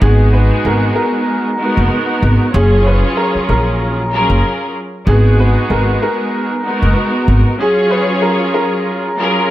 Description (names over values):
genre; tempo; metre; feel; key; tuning
hip hop; 95 BPM; 4/4; swing 56% on 16ths; unclear; A4 = 440 Hz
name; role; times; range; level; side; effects
clear upright piano; melody; 0.0-9.4 s; G#4 to B4; -18 LUFS; equal; high-pass filter, low-pass filter, ping-pong delay
muted symphonic string section; accompaniment; 0.0-9.5 s; F#3 to C#5; -16 LUFS; equal; high-pass filter, low-pass filter
upright bass; bass; 0.0-7.4 s; F#1 to A#1; -12 LUFS; equal; none
room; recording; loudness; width
small room reverb; none; -11 LUFS; side -14 dB against mid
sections
0.0-7.6 A section; 7.6-9.5 B section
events
none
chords
0.0 G#m9; 2.5 F#maj9; 5.1 G#m9; 7.6 F#maj9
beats
| 0.01 0.65 1.28 1.91 | 2.54 3.17 3.80 4.43 | 5.07 5.70 6.33 6.96 | 7.59 8.22 8.86 9.49